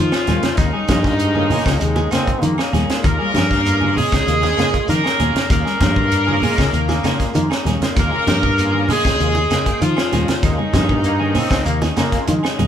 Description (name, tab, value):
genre	afrobeat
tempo	97 BPM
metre	4/4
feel	straight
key	Eb mixolydian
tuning	A4 = 440 Hz
part	bright horn section	melody	0.0-12.6 s	Eb4 to Bb4	-21 LUFS	left 1 dB	none
part	raspy alto saxophone	second line	0.0-12.6 s	Eb3 to Bb3	-29 LUFS	right 2 dB	none
part	mellow electric guitar	arpeggios	0.0-12.7 s	C3 to G3	-26 LUFS	left 4 dB	none
part	modern bright fingered electric bass	bass	0.0-12.7 s	Db2 to Eb3	-20 LUFS	equal	none
part	clean electric guitar	stabs	0.1-12.7 s	Bb3 to Ab4	-27 LUFS	right 3 dB	spring reverb
part	tight funk drum kit	drums	0.1-12.7 s	hi-hat, kick drum, snare drum	-21 LUFS	equal	none
part	claves	percussion	0.1-12.6 s	none	-36 LUFS	right 7 dB	none
part	percussive tonewheel organ	accompaniment	0.3-12.4 s	Db3 to G5	-29 LUFS	equal	overdrive, chorus vibrato, slow rotary speaker
part	congas	percussion	0.3-12.7 s	none	-26 LUFS	right 2 dB	none
part	shekere	percussion	0.3-12.7 s	none	-30 LUFS	right 1 dB	none
part	brilliant trombone section	second line	1.2-12.7 s	G3 to C4	-26 LUFS	equal	none
room	light reverb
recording	band playing live in one room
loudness	-15 LUFS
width	side -9 dB against mid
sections	0.0-12.7 A section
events	none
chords	0.0 Eb7sus4